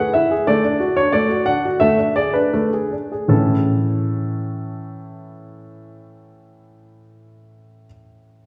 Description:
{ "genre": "classical-period piano sonatina", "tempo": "76-93 BPM", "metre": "2/4", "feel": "rubato", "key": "A major", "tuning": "A4 = 440 Hz", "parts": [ { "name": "clear baby grand piano", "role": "solo", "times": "0.0-8.5 s", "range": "A2 to F#5", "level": "-19 LUFS", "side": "equal", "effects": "none" } ], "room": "wet recital hall reverb, RT60 1.8 s", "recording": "heard from further back in the room", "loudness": "-18 LUFS", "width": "mono", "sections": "0.0-3.3 A section; 3.3-6.4 B section", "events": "slowing down 0.0-3.3", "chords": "0.5 D/A; 1.8 Asus24; 3.3 A", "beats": "| 0.48 1.14 | 1.82 2.54 | 3.32 4.10 | 4.87 5.64" }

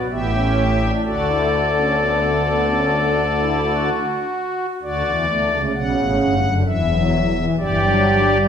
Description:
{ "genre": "classical, baroque-style 4-part fugue for pipe organ", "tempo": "64 BPM", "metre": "4/4", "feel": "straight", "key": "D major", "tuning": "A4 = 438 Hz", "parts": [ { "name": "pipe organ, strings celeste", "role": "solo", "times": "0.0-8.5 s", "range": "E1 to F#5", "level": "-16 LUFS", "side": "left 1 dB", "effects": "none" } ], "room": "wet recital hall reverb, RT60 1.4 s", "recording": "heard from further back in the room", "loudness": "-16 LUFS", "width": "side -8 dB against mid", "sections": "0.0-4.8 A section; 4.8-8.5 B section", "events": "none", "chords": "0.1 A7; 1.0 D; 6.7 Em7", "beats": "0.10 | 1.04 1.98 2.93 3.88 | 4.82 5.75 6.66 7.58" }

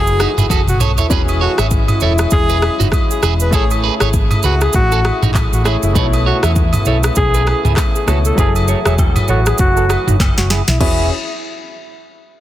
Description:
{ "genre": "afrobeats", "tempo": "99 BPM", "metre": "4/4", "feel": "swing 58% on 16ths", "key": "E major", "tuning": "A4 = 440 Hz", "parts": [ { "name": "clear alto saxophone", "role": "melody", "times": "0.0-11.1 s", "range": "E4 to B4", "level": "-20 LUFS", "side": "left 1 dB", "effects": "low-pass filter, ping-pong delay" }, { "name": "bright grand piano", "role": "accompaniment", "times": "0.0-11.1 s", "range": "B2 to C#5", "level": "-24 LUFS", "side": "left 2 dB", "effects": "low-pass filter" }, { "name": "warm French horn section", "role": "sustained chords", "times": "0.0-11.1 s", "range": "C#3 to G#4", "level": "-26 LUFS", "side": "left 1 dB", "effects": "low-pass filter" }, { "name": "hollow-body short-scale fingered electric bass", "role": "bass", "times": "0.0-11.1 s", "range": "E1 to E2", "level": "-16 LUFS", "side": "equal", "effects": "none" }, { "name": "afro-pop drum kit", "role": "drums", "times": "0.1-11.0 s", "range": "crash cymbal, handclaps, kick drum, rim click, shaker, snare drum, toms", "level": "-16 LUFS", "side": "equal", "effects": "soft clipping on snare" }, { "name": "electric guitar at the edge of break-up", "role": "riff", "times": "0.2-11.1 s", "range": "D#4 to E5", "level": "-22 LUFS", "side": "right 8 dB", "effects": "low-pass filter, ping-pong delay" }, { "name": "agogo bells and woodblock", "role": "percussion", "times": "0.2-11.1 s", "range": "none", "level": "-26 LUFS", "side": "right 2 dB", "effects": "none" } ], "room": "studio reverb", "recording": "dense, heavily limited modern master", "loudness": "-12 LUFS", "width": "side -13 dB against mid", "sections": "0.0-1.1 A section; 1.1-10.8 B section; 10.8-12.4 C section", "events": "drum fill 0.5-1.1, 10.2-10.8; filter sweep 1.1-10.8", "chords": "0.0 E69; 3.5 Amaj7; 6.0 B9sus4; 8.4 F#m9; 10.8 E69", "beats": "0.50 | 1.11 1.71 2.32 2.92 | 3.53 4.14 4.74 5.35 | 5.96 6.56 7.17 7.77 | 8.38 8.99 9.59 10.20 | 10.80" }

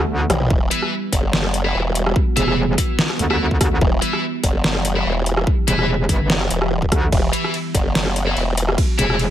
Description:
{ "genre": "heavy wobble dubstep", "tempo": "145 BPM", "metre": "4/4", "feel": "swing 54% on 16ths, half-time", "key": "E minor", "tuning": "A4 = 440 Hz", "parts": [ { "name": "evolving wavetable pad", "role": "sustained chords", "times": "0.0-9.3 s", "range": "E3 to G4", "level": "-26 LUFS", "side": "right 2 dB", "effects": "chorus, built-in reverb, sidechain pumping" }, { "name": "metallic wobble bass", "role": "bass", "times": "0.0-9.3 s", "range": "E1 to D2", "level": "-19 LUFS", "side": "equal", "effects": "chorus, overdrive" }, { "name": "dubstep drum kit", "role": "drums", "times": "0.0-9.3 s", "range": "hi-hat, ride cymbal, rim click, snare drum, toms", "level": "-22 LUFS", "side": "equal", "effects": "overdrive" }, { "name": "formant-sweep wobble bass", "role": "bass", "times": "0.3-8.8 s", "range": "E1 to B1", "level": "-20 LUFS", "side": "equal", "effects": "chorus, overdrive" }, { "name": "electronic kick drum", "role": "drums", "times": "0.5-8.9 s", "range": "none", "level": "-19 LUFS", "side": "equal", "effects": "overdrive" }, { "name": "heavy high-gain guitar", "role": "stabs", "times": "0.7-9.2 s", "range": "E4 to E5", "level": "-25 LUFS", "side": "left 2 dB", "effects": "distortion, tape echo" } ], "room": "little or no reverb", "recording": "none", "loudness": "-16 LUFS", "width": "side -11 dB against mid", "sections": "0.0-9.3 A section", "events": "break 0.1-0.5; drum fill 0.3", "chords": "0.0 Emadd9", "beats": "0.09 | 0.51 0.92 1.33 1.75 | 2.16 2.57 2.99 3.40 | 3.81 4.23 4.64 5.06 | 5.47 5.88 6.30 6.71 | 7.12 7.54 7.95 8.37 | 8.78 9.19" }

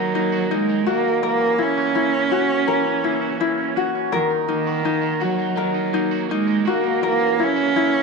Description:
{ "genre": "pop", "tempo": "83 BPM", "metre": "4/4", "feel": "straight", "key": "unclear", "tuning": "A4 = 441 Hz", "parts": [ { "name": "rich cello", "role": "melody", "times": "0.0-8.0 s", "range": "D#3 to C#4", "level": "-21 LUFS", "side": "right 6 dB", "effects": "tape echo" }, { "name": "tenor ukulele", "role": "accompaniment", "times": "0.0-8.0 s", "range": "D#4 to A#4", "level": "-22 LUFS", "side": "left 10 dB", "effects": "none" }, { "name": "electric guitar at the edge of break-up", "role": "arpeggios", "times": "0.0-8.0 s", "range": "D#3 to F#4", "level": "-27 LUFS", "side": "right 12 dB", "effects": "phaser" } ], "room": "moderate plate reverb, RT60 3.6 s", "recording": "1960s-style stereo with parts hard left and right", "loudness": "-18 LUFS", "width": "side -4 dB against mid", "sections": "0.0-8.0 A section", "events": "none", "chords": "0.0 D#madd11; 1.2 F#7; 4.1 D#m; 7.0 F#7", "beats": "0.51 | 1.23 1.96 2.68 3.41 | 4.13 4.86 5.58 6.31 | 7.04 7.76" }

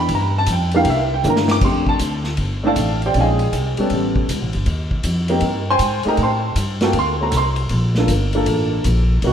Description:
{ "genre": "jazz, small-group swing and bop", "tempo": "158 BPM", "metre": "4/4", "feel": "swing 66% on 8ths", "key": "unclear", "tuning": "A4 = 440 Hz", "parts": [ { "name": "warm baby grand piano", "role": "accompaniment", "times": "0.0-9.3 s", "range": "G3 to D6", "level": "-19 LUFS", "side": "right 1 dB", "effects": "wide subtle chorus" }, { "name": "upright bass", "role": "bass", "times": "0.0-9.3 s", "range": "G1 to A2", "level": "-20 LUFS", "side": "equal", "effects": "none" }, { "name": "vintage drum kit", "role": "drums", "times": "0.1-9.3 s", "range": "crash cymbal, hi-hat, kick drum, ride cymbal, snare drum, toms", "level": "-25 LUFS", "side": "left 1 dB", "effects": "none" } ], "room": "moderate lush hall reverb, RT60 1.6 s, small room ambience", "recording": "dreamy mix soaked in reverb", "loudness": "-16 LUFS", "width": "side -8 dB against mid", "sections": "0.0-1.6 A section; 1.6-9.3 A section", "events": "drum fill 1.3-1.6", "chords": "0.1 Gm7; 0.9 C9; 1.6 F69; 3.2 Bbm11; 3.9 A9; 4.7 Abmaj9; 6.2 Gsus24; 7.0 D7b13; 7.7 Gm9", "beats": "| 0.11 0.49 0.87 1.25 | 1.63 2.01 2.39 2.77 | 3.15 3.53 3.91 4.29 | 4.67 5.05 5.43 5.81 | 6.19 6.57 6.95 7.33 | 7.71 8.09 8.47 8.85 | 9.23" }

